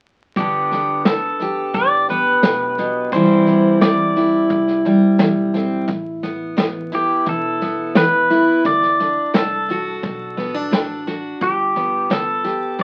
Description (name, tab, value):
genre	honky-tonk and classic country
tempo	87 BPM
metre	4/4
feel	straight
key	G major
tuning	A4 = 440 Hz
part	pedal steel guitar	melody	0.4-12.8 s	G4 to D5	-21 LUFS	equal	none
part	picked steel-string acoustic guitar	accompaniment	0.4-12.8 s	E2 to G4	-21 LUFS	equal	none
part	upright bass	bass	0.4-12.8 s	E1 to D2	-36 LUFS	equal	none
part	vintage brush drum kit	drums	0.4-12.8 s	hi-hat, kick drum, snare drum	-22 LUFS	equal	none
room	moderate studio reverb, RT60 0.5 s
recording	very old 78 rpm record, vinyl crackle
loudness	-18 LUFS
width	mono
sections	0.4-12.8 A section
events	none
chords	0.4 G; 3.1 C; 5.9 Asus2; 8.6 D; 11.4 G